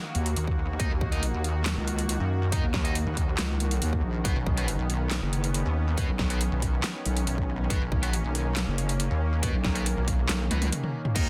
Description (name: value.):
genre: heavy wobble dubstep.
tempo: 139 BPM.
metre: 4/4.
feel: half-time.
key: unclear.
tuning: A4 = 440 Hz.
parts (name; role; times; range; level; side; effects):
supersaw pad; sustained chords; 0.0-11.3 s; Eb3 to Gb4; -37 LUFS; equal; vintage 12-bit sampler grit, sidechain pumping.
wobble bass; bass; 0.1-11.3 s; F#1 to Eb2; -30 LUFS; equal; chorus, overdrive.
dubstep drum kit; drums; 0.1-11.2 s; crash cymbal, handclaps, hi-hat, snare drum, toms; -34 LUFS; equal; none.
pulsing pluck wobble bass; bass; 0.4-10.3 s; B1 to Gb2; -30 LUFS; equal; chorus, overdrive.
electronic kick drum; drums; 0.5-11.2 s; none; -31 LUFS; equal; none.
distorted electric guitar; stabs; 0.8-11.3 s; B3 to Eb5; -39 LUFS; equal; overdrive, digital delay.
room: little or no reverb.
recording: dense, heavily limited modern master.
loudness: -27 LUFS.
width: mono.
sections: 0.0-11.2 A section.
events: drop 0.0-11.2; drum fill 10.5-11.2; break 10.7-11.2.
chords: 0.0 Ebm; 4.2 Badd9.